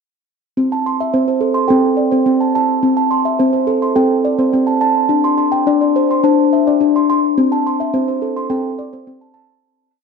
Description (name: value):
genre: world meditative, meditative tuned percussion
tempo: 106 BPM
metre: 4/4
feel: straight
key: C major pentatonic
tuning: A4 = 439 Hz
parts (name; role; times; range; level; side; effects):
- steel tongue drum; solo; 0.6-9.6 s; C4 to C6; -13 LUFS; equal; tape echo
room: wet echo chamber reverb, RT60 1.7 s, small room reverb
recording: dark, warm production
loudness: -13 LUFS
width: side -5 dB against mid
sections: 0.6-9.6 A section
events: fade-out 7.4-9.6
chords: 0.6 C; 5.1 D5; 7.4 C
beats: | 0.58 1.14 1.71 2.27 | 2.84 3.40 3.97 4.53 | 5.10 5.67 6.24 6.80 | 7.37 7.94 8.50 9.07